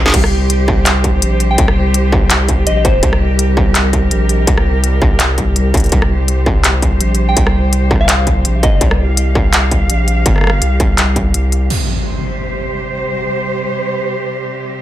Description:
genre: half-time drum and bass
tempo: 166 BPM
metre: 4/4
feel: swing 55% on 16ths, half-time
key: unclear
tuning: A4 = 439 Hz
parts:
  - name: rich symphonic cello section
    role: sustained chords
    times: 0.0-14.8 s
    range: C3 to F5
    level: -19 LUFS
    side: right 1 dB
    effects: sidechain pumping
  - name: saturated sub bass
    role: bass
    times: 0.0-11.7 s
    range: G1 to C2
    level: -14 LUFS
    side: equal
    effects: none
  - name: electronic kick drum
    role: drums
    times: 0.1-11.2 s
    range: none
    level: -15 LUFS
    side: equal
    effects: distortion, small room ambience
  - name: industrial drum kit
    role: drums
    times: 0.1-11.8 s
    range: crash cymbal, handclaps, hi-hat, rim click, snare drum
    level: -16 LUFS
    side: equal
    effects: small room ambience
  - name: soft synth bell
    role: melody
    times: 1.5-3.4, 7.3-8.9 s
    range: C5 to G5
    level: -22 LUFS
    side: left 1 dB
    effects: chorus, dub echo
  - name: impact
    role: sound effects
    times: 11.7-13.1 s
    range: none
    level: -21 LUFS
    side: equal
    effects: none
room: light reverb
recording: none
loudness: -11 LUFS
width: side -13 dB against mid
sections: 0.0-11.7 A section; 11.7-14.8 B section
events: drop 0.0-11.7; kick drops out 11.3-11.7; impact 11.7-13.1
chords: 0.0 C5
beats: | 0.14 0.50 0.86 1.22 | 1.58 1.94 2.31 2.67 | 3.03 3.39 3.75 4.11 | 4.47 4.84 5.20 5.56 | 5.92 6.28 6.64 7.00 | 7.37 7.73 8.09 8.45 | 8.81 9.17 9.54 9.90 | 10.26 10.62 10.98 11.34 | 11.70 12.06 12.43 12.79 | 13.15 13.51 13.87 14.23 | 14.60

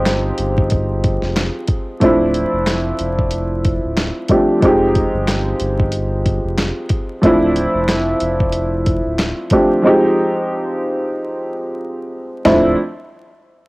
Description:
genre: hip hop, boom-bap hip-hop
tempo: 92 BPM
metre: 4/4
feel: swing 57% on 16ths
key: unclear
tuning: A4 = 439 Hz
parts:
  - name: warm upright piano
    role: accompaniment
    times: 0.0-12.8 s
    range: F3 to G4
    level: -16 LUFS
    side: equal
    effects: cassette tape
  - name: sub bass with octave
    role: bass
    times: 0.0-12.8 s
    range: D1 to G1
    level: -22 LUFS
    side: equal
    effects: transformer saturation
  - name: dusty soul sampler-style drum kit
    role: drums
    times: 0.1-12.6 s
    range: handclaps, hi-hat, kick drum, snare drum, toms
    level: -19 LUFS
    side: equal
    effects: none
  - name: finger snaps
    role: percussion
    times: 0.1-12.8 s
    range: none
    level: -32 LUFS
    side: left 1 dB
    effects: none
room: light reverb, digital ambience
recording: home recording on cassette, vinyl crackle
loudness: -14 LUFS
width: side -22 dB against mid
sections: 0.0-2.0 A section; 2.0-12.5 B section; 12.5-13.7 C section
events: break 9.8-12.5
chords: 0.0 Fm7; 2.0 Dm7; 4.6 Fm7; 7.2 Dm7; 9.8 Fm7; 12.5 Dm7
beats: 0.06 0.71 1.36 | 2.02 2.67 3.32 3.97 | 4.62 5.28 5.93 6.58 | 7.23 7.89 8.54 9.19 | 9.84 10.49 11.15 11.80 | 12.45

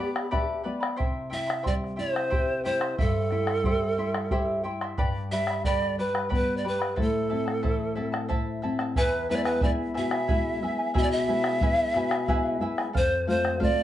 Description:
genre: andean folk, Andean ensemble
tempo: 60 BPM (dotted quarters)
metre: 6/8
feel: straight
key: unclear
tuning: A4 = 440 Hz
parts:
  - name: pan flute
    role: melody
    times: 0.0-13.8 s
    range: G4 to E5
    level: -28 LUFS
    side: right 1 dB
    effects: none
  - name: charango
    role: accompaniment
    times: 0.0-13.8 s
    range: E4 to C6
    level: -32 LUFS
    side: equal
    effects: none
  - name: nylon-string guitar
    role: accompaniment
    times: 0.0-13.8 s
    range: E2 to E5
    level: -30 LUFS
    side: left 2 dB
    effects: none
  - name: bombo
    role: percussion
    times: 0.2-13.8 s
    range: none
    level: -29 LUFS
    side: equal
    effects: none
room: wet small room reverb, RT60 0.5 s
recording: heard from further back in the room, nothing above 11.0 kHz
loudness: -24 LUFS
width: side -12 dB against mid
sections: 0.0-9.0 A section; 9.0-13.8 B section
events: nylon-string guitar fill 0.0-1.0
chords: 0.0 G; 1.0 C; 5.0 G; 7.0 Am; 9.0 E; 12.9 F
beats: | 0.99 1.99 | 2.98 3.98 | 4.98 5.97 | 6.97 7.97 | 8.96 9.96 | 10.95 11.95 | 12.94

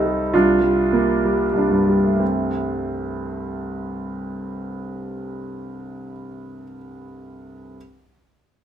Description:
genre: classical, impressionist solo piano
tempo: 28-38 BPM (dotted quarters)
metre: 6/8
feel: rubato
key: unclear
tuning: A4 = 441 Hz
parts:
  - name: clear concert grand piano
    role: solo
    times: 0.0-7.8 s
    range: C2 to A4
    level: -20 LUFS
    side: right 1 dB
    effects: none
room: light reverb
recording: minimal, uncompressed stereo recording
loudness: -19 LUFS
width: side -9 dB against mid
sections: 0.0-2.2 A section; 2.2-5.5 B section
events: slowing down 0.0-2.2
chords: 0.3 Bb69/C; 2.2 C5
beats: 0.32 | 2.20 3.88

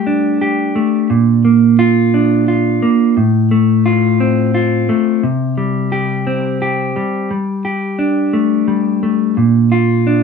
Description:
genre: rock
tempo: 87 BPM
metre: 3/4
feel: straight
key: G minor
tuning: A4 = 441 Hz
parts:
  - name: mellow electric guitar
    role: solo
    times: 0.0-10.2 s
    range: A2 to G4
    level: -12 LUFS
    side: equal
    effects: none
room: moderate studio ambience, RT60 0.5 s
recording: band playing live in one room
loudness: -12 LUFS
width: side -6 dB against mid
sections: 0.0-7.3 A section; 7.3-10.2 B section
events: none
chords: 0.0 Gsus2; 1.1 Bb; 3.2 F/A; 5.2 C5; 7.3 Gsus2; 9.4 Bb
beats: 0.41 | 1.10 1.79 2.48 | 3.17 3.85 4.54 | 5.23 5.92 6.61 | 7.30 7.99 8.68 | 9.37 10.06

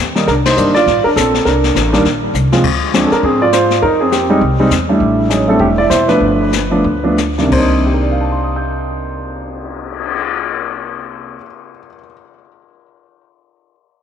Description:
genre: jazz piano trio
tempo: 172-203 BPM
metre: 4/4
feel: swing 60% on 8ths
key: C dorian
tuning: A4 = 440 Hz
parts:
  - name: upright bass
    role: bass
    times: 0.0-11.4 s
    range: E1 to Ab2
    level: -19 LUFS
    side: equal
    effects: none
  - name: warm baby grand piano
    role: melody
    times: 0.2-12.1 s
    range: C2 to G6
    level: -13 LUFS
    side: right 1 dB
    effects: tape echo
  - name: jazz brush drum kit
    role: drums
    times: 0.2-10.2 s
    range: brushed snare drum, crash cymbal, cymbal swell, hi-hat, kick drum, ride cymbal, snare drum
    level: -20 LUFS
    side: left 9 dB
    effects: none
room: moderate echo chamber reverb, RT60 2.4 s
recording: 1960s-style stereo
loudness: -11 LUFS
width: side -8 dB against mid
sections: 0.0-2.6 A section; 2.6-7.5 B section; 7.5-10.3 C section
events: band accent 0.4; drum fill 2.3; slowing down 5.0-7.5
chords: 0.3 Cm9; 2.6 Dm7b5; 3.8 Fm7; 5.0 A7sus4; 6.2 G7; 7.5 Cm9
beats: | 0.28 0.57 0.87 1.16 | 1.46 1.75 2.05 2.34 | 2.64 2.94 3.23 3.52 | 3.82 4.12 4.41 4.71 | 5.00 5.30 5.60 5.90 | 6.21 6.52 6.84 7.18 | 7.52 7.87 8.21 8.56 | 8.91 9.26 9.61 9.96

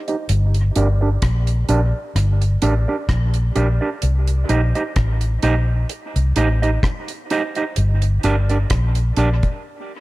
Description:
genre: dub reggae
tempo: 64 BPM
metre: 4/4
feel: swing 55% on 16ths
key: C dorian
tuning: A4 = 440 Hz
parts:
  - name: mellow electric guitar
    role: accompaniment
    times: 0.1-9.3 s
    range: D4 to Eb5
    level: -23 LUFS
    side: right 3 dB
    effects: spring reverb, low-pass filter, dub echo
  - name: deep reggae drum kit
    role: drums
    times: 0.1-9.6 s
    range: hi-hat, kick drum, rim click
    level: -23 LUFS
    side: equal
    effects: none
  - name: vintage muted fingered electric bass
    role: bass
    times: 0.3-9.4 s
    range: G1 to C2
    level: -17 LUFS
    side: equal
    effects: none
room: studio ambience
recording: none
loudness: -16 LUFS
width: side -19 dB against mid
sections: 0.0-10.0 A section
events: filter sweep on clean electric guitar 0.0-10.0; break 9.6-10.0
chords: 0.3 Gm; 4.0 Cm; 7.8 Gm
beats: | 0.28 1.22 2.15 3.09 | 4.03 4.96 5.90 6.83 | 7.77 8.70

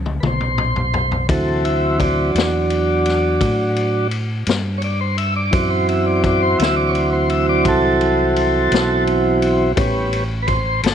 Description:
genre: slow blues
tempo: 57 BPM (dotted quarters)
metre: 12/8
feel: straight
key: unclear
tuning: A4 = 439 Hz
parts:
  - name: fingered electric bass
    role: bass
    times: 0.0-10.9 s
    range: G1 to A2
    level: -22 LUFS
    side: equal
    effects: none
  - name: vintage drum kit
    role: drums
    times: 0.1-10.9 s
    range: kick drum, ride cymbal, snare drum, toms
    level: -23 LUFS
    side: left 3 dB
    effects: none
  - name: tonewheel organ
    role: sustained chords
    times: 0.2-10.9 s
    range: E3 to E5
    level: -17 LUFS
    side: right 1 dB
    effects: slow rotary speaker
room: moderate echo chamber reverb, RT60 2.2 s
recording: 1960s-style stereo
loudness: -15 LUFS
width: side -8 dB against mid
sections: 0.0-10.9 A section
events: drum fill 0.0-1.3; tonewheel organ solo 0.0-10.9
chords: 0.0 Aadd9 (rootless); 1.3 D9; 9.8 A9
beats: 0.23 | 1.29 2.35 3.41 4.47 | 5.53 6.59 7.65 8.71 | 9.77 10.83

